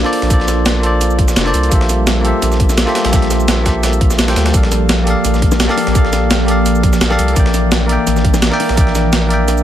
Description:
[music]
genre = liquid drum and bass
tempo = 170 BPM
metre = 4/4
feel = swing 53% on 16ths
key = Bb lydian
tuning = A4 = 440 Hz
[part]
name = bell-like tine electric piano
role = accompaniment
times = 0.0-9.6 s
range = Bb3 to G5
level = -17 LUFS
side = equal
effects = digital delay
[part]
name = glassy FM pad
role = sustained chords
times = 0.0-9.6 s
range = E3 to E5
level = -20 LUFS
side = left 1 dB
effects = ensemble chorus, built-in reverb, sidechain pumping
[part]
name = saturated sub bass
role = bass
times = 0.0-9.6 s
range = F1 to D2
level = -16 LUFS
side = equal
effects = none
[part]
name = breakbeat sampler-style drum kit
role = drums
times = 0.0-9.6 s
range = hi-hat, shaker, snare drum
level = -19 LUFS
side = right 1 dB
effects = none
[part]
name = breakbeat sampler-style drum kit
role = drums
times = 0.0-9.6 s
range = hi-hat, snare drum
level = -24 LUFS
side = equal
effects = high-pass filter on hats, high-pass filter on snare
[part]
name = electronic kick drum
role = drums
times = 0.3-8.8 s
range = none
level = -13 LUFS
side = equal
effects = none
[part]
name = bongos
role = percussion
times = 5.5-8.7 s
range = none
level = -23 LUFS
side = left 6 dB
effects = none
[sound]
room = little or no reverb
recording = none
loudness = -11 LUFS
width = side -11 dB against mid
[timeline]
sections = 0.0-9.6 A section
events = none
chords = 0.0 Bbmaj7; 1.7 Fmaj9/Bb; 4.5 Gm9/Bb; 7.4 Em7b5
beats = | 0.30 0.66 1.01 1.36 | 1.72 2.07 2.42 2.77 | 3.13 3.48 3.83 4.19 | 4.54 4.89 5.25 5.60 | 5.95 6.30 6.66 7.01 | 7.36 7.72 8.07 8.42 | 8.78 9.13 9.48

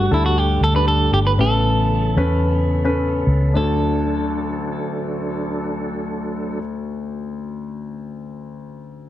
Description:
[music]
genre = pop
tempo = 104-121 BPM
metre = 4/4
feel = straight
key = D major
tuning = A4 = 440 Hz
[part]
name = clean electric guitar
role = melody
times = 0.0-6.6 s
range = E4 to B4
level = -23 LUFS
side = right 2 dB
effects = digital delay
[part]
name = warm concert grand piano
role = accompaniment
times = 0.0-9.1 s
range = D2 to B4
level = -23 LUFS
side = left 3 dB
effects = none
[part]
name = tonewheel organ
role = sustained chords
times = 0.0-6.6 s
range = C#3 to A4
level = -27 LUFS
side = right 2 dB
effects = chorus vibrato, slow rotary speaker
[part]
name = vintage muted fingered electric bass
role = bass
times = 0.0-6.6 s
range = G1 to E2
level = -19 LUFS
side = equal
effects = none
[sound]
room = light reverb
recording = heavily compressed radio sound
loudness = -17 LUFS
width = side -13 dB against mid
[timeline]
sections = 0.0-3.6 A section; 3.6-8.2 B section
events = slowing down 0.0-3.6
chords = 0.0 Gsus2; 1.4 Aadd9; 3.6 D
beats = 0.36 0.86 | 1.38 1.90 2.44 2.99 | 3.56 4.14 4.71 5.29 | 5.87 6.45 7.03 7.61

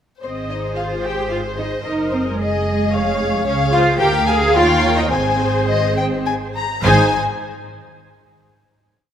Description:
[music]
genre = quick classical-period movement for string orchestra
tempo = 103-113 BPM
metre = 3/4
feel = straight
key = Ab major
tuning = A4 = 440 Hz
[part]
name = dark chamber violin section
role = melody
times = 0.2-7.2 s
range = C5 to Bb5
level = -22 LUFS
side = left 6 dB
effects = none
[part]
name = warm studio violin section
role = second line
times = 0.2-7.2 s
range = Ab4 to Ab5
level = -24 LUFS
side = left 3 dB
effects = none
[part]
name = rich symphonic viola section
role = accompaniment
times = 0.2-7.2 s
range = Eb4 to Eb5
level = -24 LUFS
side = right 1 dB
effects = none
[part]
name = dark chamber double bass section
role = bass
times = 0.2-7.2 s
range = F1 to Eb2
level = -22 LUFS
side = right 2 dB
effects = none
[part]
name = rich symphonic cello section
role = bass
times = 0.2-7.2 s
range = Ab3 to Ab4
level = -21 LUFS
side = right 2 dB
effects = none
[sound]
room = moderate scoring stage reverb, RT60 2.1 s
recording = none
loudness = -15 LUFS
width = side -9 dB against mid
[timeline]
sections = 0.2-6.8 A section; 6.8-8.6 final chord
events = slowing down 2.7-6.8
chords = 0.2 Ab; 1.9 Ab7/Gb; 2.9 Db/F; 3.5 Db; 4.0 Bb7/D; 4.6 Eb7; 5.1 Ab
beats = | 0.24 0.78 1.32 | 1.86 2.40 2.93 | 3.46 4.01 4.56 | 5.12 5.69 6.27 | 6.85

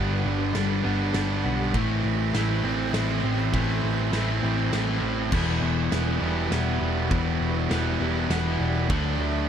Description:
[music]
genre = post-rock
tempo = 100 BPM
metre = 3/4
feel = straight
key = unclear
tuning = A4 = 438 Hz
[part]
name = shimmering ambient pad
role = sustained chords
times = 0.0-9.5 s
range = F#4 to B5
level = -39 LUFS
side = right 3 dB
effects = none
[part]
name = semi-hollow electric guitar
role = arpeggios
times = 0.0-9.5 s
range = E2 to D4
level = -32 LUFS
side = right 1 dB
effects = spring reverb, slapback echo
[part]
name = sludgy distorted guitar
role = riff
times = 0.0-9.5 s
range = E2 to D4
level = -28 LUFS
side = left 6 dB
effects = overdrive
[part]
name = tight distorted guitar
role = riff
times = 0.0-9.5 s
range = G2 to E4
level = -30 LUFS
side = right 14 dB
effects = distortion
[part]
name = hollow-body short-scale picked electric bass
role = bass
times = 0.0-9.5 s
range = E1 to D2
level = -28 LUFS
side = equal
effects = none
[part]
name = loose indie drum kit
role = drums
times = 0.5-9.0 s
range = crash cymbal, kick drum, ride cymbal, snare drum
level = -31 LUFS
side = equal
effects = none
[sound]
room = light reverb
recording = none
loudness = -22 LUFS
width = side -8 dB against mid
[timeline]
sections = 0.0-9.5 A section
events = none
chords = 0.0 G; 1.7 Amadd9; 5.3 Em; 8.9 D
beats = 0.55 1.14 | 1.74 2.34 2.93 | 3.53 4.13 4.72 | 5.32 5.92 6.51 | 7.11 7.71 8.30 | 8.90

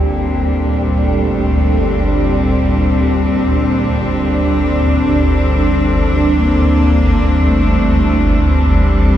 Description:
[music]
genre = dark ambient drone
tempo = free time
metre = none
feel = none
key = G dorian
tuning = A4 = 440 Hz
[part]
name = rich cello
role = melody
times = 0.0-9.2 s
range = G3 to Bb3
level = -23 LUFS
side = right 1 dB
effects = diffuse ambient delay
[part]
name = clear symphonic cello section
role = sustained chords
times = 0.0-9.2 s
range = Bb2 to D4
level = -16 LUFS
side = left 1 dB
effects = none
[part]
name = dark detuned synth bell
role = arpeggios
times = 0.0-9.2 s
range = G4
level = -35 LUFS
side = right 5 dB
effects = none
[part]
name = swarming drone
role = drone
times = 0.0-9.2 s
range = G1 to D2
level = -14 LUFS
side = equal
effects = built-in reverb
[part]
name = wind-like tuned noise texture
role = texture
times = 0.0-9.2 s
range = G3 to G4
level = -24 LUFS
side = right 1 dB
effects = built-in reverb
[sound]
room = moderate huge ambient reverb, RT60 8.0 s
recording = dark, warm production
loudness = -11 LUFS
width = side -11 dB against mid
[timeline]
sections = 0.0-9.2 A section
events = fade-in on cello 0.0-9.2; fade-out on synth texture 0.0-9.2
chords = 0.0 Gm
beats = free time

